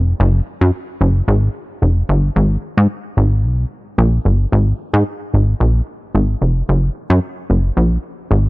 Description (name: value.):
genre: funk.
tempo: 111 BPM.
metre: 4/4.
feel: straight.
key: F# major.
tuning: A4 = 440 Hz.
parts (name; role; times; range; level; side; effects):
plucky analog bass; solo; 0.0-8.5 s; E#1 to G#2; -14 LUFS; equal; none.
room: little or no reverb.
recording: dry, close 1970s-style studio recording.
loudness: -14 LUFS.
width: side -22 dB against mid.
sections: 0.0-8.5 A section.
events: none.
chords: none.